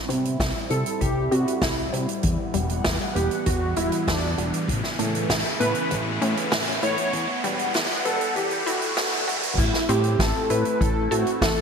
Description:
synthwave; 98 BPM; 4/4; straight; A4 = 440 Hz
phased analog pad; sustained chords; 0.0-11.6 s; C#3 to F#5; -30 LUFS; equal; phaser, chorus, sidechain pumping
wide unison pluck; arpeggios; 0.0-11.6 s; C#3 to C5; -32 LUFS; left 3 dB; ping-pong delay
riser and swell; sound effects; 2.0-9.6 s; -31 LUFS; equal
fat analog bass; bass; 0.1-11.6 s; E1 to C3; -27 LUFS; equal
street-band drum kit; drums; 0.1-11.5 s; crash cymbal, hi-hat, snare drum; -28 LUFS; right 1 dB
kick drum; drums; 0.4-11.5 s; -29 LUFS; equal
soft supersaw; melody; 0.7-11.6 s; D4 to C#5; -28 LUFS; right 1 dB; digital delay
soft synth bell; second line; 0.7-11.6 s; D4 to C#5; -32 LUFS; right 2 dB; chorus, phaser, ping-pong delay
wet lush hall reverb, RT60 1.7 s, small room ambience; bright 1980s-style digital production, high-pass filter; -21 LUFS; side -6 dB against mid
0.0-9.6 A section; 9.6-11.6 B section
filter sweep on synth arpeggio sound 0.0-9.6; filter sweep 0.0-9.6; riser 2.0-9.6; swell 8.4-9.6
0.0 C; 2.2 Emadd9; 4.7 Aadd9; 7.1 Emadd9; 9.6 Am

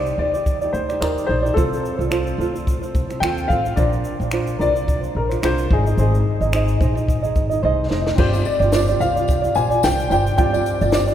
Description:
acoustic pop; 109 BPM; 4/4; swing 55% on 16ths; A4 = 441 Hz
tenor ukulele; accompaniment; 0.0-11.1 s; C4 to Eb5; -22 LUFS; right 4 dB
upright bass; bass; 0.0-11.1 s; F1 to Eb2; -22 LUFS; left 1 dB
compact cocktail drum kit; drums; 0.1-11.1 s; crash cymbal, finger snaps, kick drum, shaker, snare drum; -24 LUFS; equal
warm upright piano; melody; 0.2-11.1 s; Ab4 to Ab5; -24 LUFS; left 3 dB
clear concert grand piano; accompaniment; 8.2-11.1 s; C4 to D5; -31 LUFS; left 6 dB
tambourine; percussion; 8.3-11.1 s; -37 LUFS; left 7 dB
wet cathedral reverb, RT60 4.5 s; recorded in a church or concert hall; -17 LUFS; side -10 dB against mid
0.0-8.2 A section; 8.2-11.1 B section
drum fill 7.6-8.2
0.0 Cmadd9; 1.6 F/C; 3.8 Bbadd9; 5.7 Ab; 8.2 G7sus4

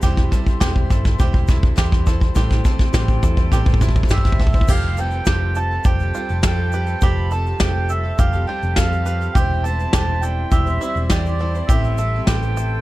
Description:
indie folk with a building arrangement; 103 BPM; 4/4; straight; A4 = 440 Hz
clear concert grand piano; accompaniment; 0.0-12.8 s; F1 to G5; -30 LUFS; right 4 dB
picked twelve-string acoustic guitar; accompaniment; 0.0-12.8 s; A2 to C5; -31 LUFS; left 4 dB
breathy bright small flute group; sustained chords; 0.0-12.8 s; G4 to C6; -35 LUFS; left 1 dB
bluegrass banjo; arpeggios; 0.0-12.8 s; E4 to B4; -32 LUFS; right 5 dB
hollow-body short-scale picked electric bass; bass; 0.0-12.8 s; E1 to F2; -21 LUFS; equal
soft brush drum kit; drums; 0.0-12.4 s; crash cymbal, kick drum, snare drum; -17 LUFS; equal
egg shaker; percussion; 0.0-12.7 s; -40 LUFS; left 17 dB
mellow accordion; melody; 4.1-12.8 s; D5 to B5; -25 LUFS; right 2 dB
little or no reverb; dark, warm production; -16 LUFS; side -17 dB against mid
0.0-4.7 A section; 4.7-12.8 B section
build-up 0.0-4.7; drum fill 0.0-4.7; grand piano fill 2.9-4.7
0.0 C/E; 2.4 Am7; 4.7 Fadd9; 9.4 C/E; 11.7 Am7

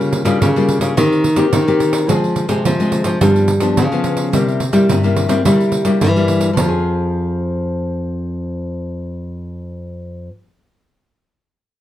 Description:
samba and choro; 107 BPM; 4/4; straight; F minor; A4 = 443 Hz
nylon-string guitar; accompaniment; 0.0-10.4 s; G2 to Ab4; -18 LUFS; left 3 dB
nylon-string guitar; bass; 0.0-10.3 s; F2 to C4; -18 LUFS; right 1 dB
pandeiro; percussion; 0.0-6.7 s; -20 LUFS; right 4 dB
light reverb; dark, warm production; -13 LUFS; side -12 dB against mid
0.0-6.6 A section; 6.6-8.8 B section
0.0 Gm7b5/Db; 1.0 Cm7/Eb; 2.1 Fm; 3.2 G7; 4.3 C7; 6.6 Fm

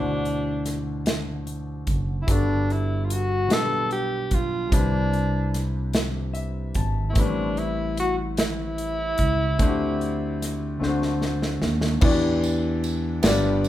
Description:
slow gospel; 49 BPM (dotted quarters); 6/8; straight; A4 = 436 Hz
warm tenor saxophone; melody; 0.0-11.2 s; D4 to A4; -27 LUFS; equal
clear grand piano; accompaniment; 0.0-13.7 s; G2 to A5; -27 LUFS; left 2 dB
fingered electric bass; bass; 0.0-13.7 s; F#1 to E2; -26 LUFS; right 1 dB
modern studio drum kit; drums; 0.3-13.7 s; crash cymbal, hi-hat, kick drum, ride cymbal, snare drum; -25 LUFS; equal
tambourine; percussion; 12.4-13.7 s; -36 LUFS; right 4 dB
light reverb; band playing live in one room; -22 LUFS; side -13 dB against mid
0.0-12.0 A section; 12.0-13.7 B section
grand piano fill 5.9-7.2; drum fill 10.8-12.0
0.0 D13; 2.3 Gmaj9; 3.5 G7/B; 4.7 Cmaj9; 7.2 Am9; 9.6 D7sus4; 10.8 D7; 12.0 Em7

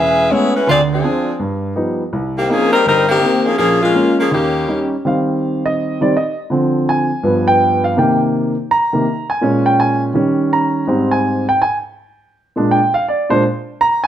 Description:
jazz; 165 BPM; 4/4; swing 64% on 8ths; Eb major from 5.1 s; A4 = 440 Hz
bright saxophone section; melody; 0.0-4.9 s; Eb3 to E5; -14 LUFS; left 2 dB; plate reverb
warm grand piano; accompaniment; 0.0-14.1 s; E1 to Bb5; -14 LUFS; right 1 dB
moderate large studio reverb, RT60 0.9 s; -13 LUFS; side -10 dB against mid
0.0-5.1 A section; 5.1-14.1 B section
grand piano solo 5.1-14.1
0.0 Amaj9; 0.7 Dm7b5; 1.4 G7b13; 2.1 Cm7; 3.6 Bbm7; 4.3 Eb7; 5.1 Eb6; 6.5 Dm7b5; 7.2 G7; 8.0 Cm7; 9.4 Bbm7; 10.2 Eb7; 10.9 Abmaj7; 12.3 Bb7

